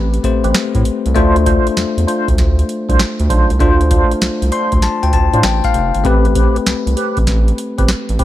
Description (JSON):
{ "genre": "R&B, new jack swing", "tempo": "98 BPM", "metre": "4/4", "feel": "swing 67% on 16ths", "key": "unclear", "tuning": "A4 = 440 Hz", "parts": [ { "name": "bell-like tine electric piano", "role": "accompaniment", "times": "0.0-8.2 s", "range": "A3 to C6", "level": "-18 LUFS", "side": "moving between left 8 dB and equal", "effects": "auto-pan" }, { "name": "round analog bass", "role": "bass", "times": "0.0-8.2 s", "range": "F1 to A2", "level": "-16 LUFS", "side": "equal", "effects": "none" }, { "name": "booming analog drum machine", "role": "drums", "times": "0.1-8.2 s", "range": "hi-hat, kick drum, snare drum", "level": "-16 LUFS", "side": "equal", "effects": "none" }, { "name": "tonewheel organ", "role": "stabs", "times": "0.4-8.2 s", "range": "C4 to C5", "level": "-20 LUFS", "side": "right 2 dB", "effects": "overdrive, chorus vibrato, slow rotary speaker, tape echo" } ], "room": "little or no reverb", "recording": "none", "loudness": "-12 LUFS", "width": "side -14 dB against mid", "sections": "0.0-8.2 A section", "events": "tine electric piano fill 4.2-6.1", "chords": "0.0 Am9; 1.2 Dm7; 6.1 Am9" }